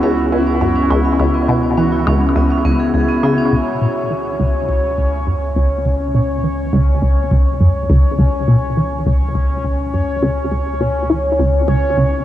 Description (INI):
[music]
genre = ambient, sequencer-driven space music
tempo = 103 BPM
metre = 4/4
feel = straight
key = unclear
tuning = A4 = 442 Hz
[part]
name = vibraphone with medium hard mallets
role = arpeggios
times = 0.0-3.5 s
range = B3 to G#4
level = -18 LUFS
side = equal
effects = auto-pan, analog delay
[part]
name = resonant blip pluck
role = riff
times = 0.0-12.1 s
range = C#2 to E3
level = -16 LUFS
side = equal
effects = phaser, analog delay
[part]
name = analog drone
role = bass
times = 0.0-12.2 s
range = C#2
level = -23 LUFS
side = equal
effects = chorus
[part]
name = bubbling stepped-filter texture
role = texture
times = 0.0-12.2 s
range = C#4 to C#5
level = -21 LUFS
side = left 1 dB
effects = chorus, built-in reverb
[sound]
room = moderate huge ambient reverb, RT60 8.3 s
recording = worn, warbling old tape, cassette tape, warbly pitch drift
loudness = -13 LUFS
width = side -12 dB against mid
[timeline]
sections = 0.0-3.5 A section; 3.5-12.2 B section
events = filter sweep on synth arpeggio sound 3.5-12.2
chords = 0.0 C#m